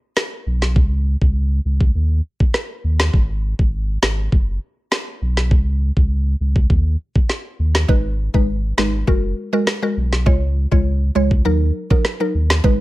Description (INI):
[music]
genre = dancehall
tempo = 101 BPM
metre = 4/4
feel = straight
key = Eb minor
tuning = A4 = 437 Hz
[part]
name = island pop drum kit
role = drums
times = 0.2-12.8 s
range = kick drum, rim click, snare drum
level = -16 LUFS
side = equal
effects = vintage 12-bit sampler grit
[part]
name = warm sub bass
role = bass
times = 0.5-12.8 s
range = Gb1 to Eb2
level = -18 LUFS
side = equal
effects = none
[part]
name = mallet-like synth pluck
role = accompaniment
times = 7.9-12.8 s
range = Gb3 to Db5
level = -21 LUFS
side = equal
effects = chorus, phaser, sidechain pumping
[sound]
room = digital ambience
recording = none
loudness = -16 LUFS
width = side -18 dB against mid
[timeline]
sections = 0.0-12.8 A section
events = none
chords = 0.0 N.C.; 4.3 Gbsus4; 5.5 N.C.; 7.9 Abm; 9.1 Gbadd9; 10.3 Db; 11.5 Ebm